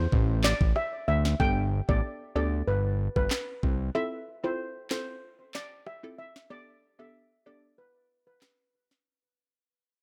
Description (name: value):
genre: dancehall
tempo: 94 BPM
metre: 4/4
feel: straight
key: unclear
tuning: A4 = 440 Hz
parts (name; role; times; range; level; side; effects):
- hollow square pluck; accompaniment; 0.0-7.8 s; B3 to A4; -38 LUFS; equal; chorus, sidechain pumping
- fat analog bass; bass; 0.0-3.9 s; G1 to D2; -29 LUFS; equal; none
- afro-pop drum kit; drums; 0.1-9.1 s; handclaps, kick drum, rim click, snare drum; -30 LUFS; equal; none
- steel pan; melody; 0.4-8.4 s; B4 to G5; -35 LUFS; equal; digital delay
room: digital ambience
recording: none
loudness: -28 LUFS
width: mono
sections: 0.0-9.1 A section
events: fade-out 0.0-9.1; break 6.5-9.1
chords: 0.0 N.C.; 1.4 Gadd9; 4.0 Fmaj7; 6.5 Gadd9